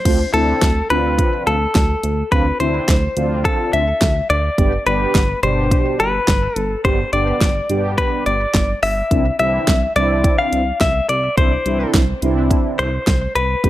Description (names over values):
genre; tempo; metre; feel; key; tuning
synth-pop; 106 BPM; 4/4; straight; D dorian; A4 = 440 Hz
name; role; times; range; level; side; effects
direct-recorded clean electric guitar; melody; 0.0-13.7 s; A4 to F5; -19 LUFS; left 2 dB; spring reverb, tape echo
mellow synth brass; accompaniment; 0.1-13.7 s; B2 to G4; -22 LUFS; right 1 dB; chorus
chorused synth bass; bass; 0.1-13.7 s; G1 to D2; -21 LUFS; equal; none
pop drum kit; drums; 0.1-13.7 s; crash cymbal, handclaps, hi-hat, kick drum, snare drum; -17 LUFS; equal; none
room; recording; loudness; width
light reverb, digital ambience; none; -15 LUFS; side -14 dB against mid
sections
0.1-13.7 A section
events
none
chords
0.1 Dm7; 4.6 G; 9.1 Cadd9